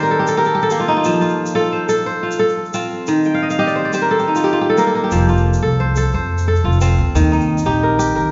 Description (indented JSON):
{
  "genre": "west african traditional, West African string and xylophone music",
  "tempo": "118 BPM (dotted quarters)",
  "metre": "12/8",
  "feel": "straight",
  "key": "F mixolydian",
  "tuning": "A4 = 440 Hz",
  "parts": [
    { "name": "kora", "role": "arpeggios", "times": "0.0-8.3 s", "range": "Eb3 to G5", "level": "-18 LUFS", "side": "equal", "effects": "none" },
    { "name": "egg shaker", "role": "percussion", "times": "0.3-8.1 s", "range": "none", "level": "-38 LUFS", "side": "equal", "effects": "none" },
    { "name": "upright bass", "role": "bass", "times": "5.1-8.3 s", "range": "F1 to Eb3", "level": "-18 LUFS", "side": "equal", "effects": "none" }
  ],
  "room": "wet recital hall reverb, RT60 1.5 s",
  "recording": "recorded in a church or concert hall, nothing above 7.6 kHz",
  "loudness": "-16 LUFS",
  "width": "mono",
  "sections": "0.0-8.3 A section",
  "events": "kora fill 0.0-1.1, 3.3-5.1",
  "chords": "0.0 Eb; 1.1 F; 3.1 Eb; 5.1 F; 7.2 Eb"
}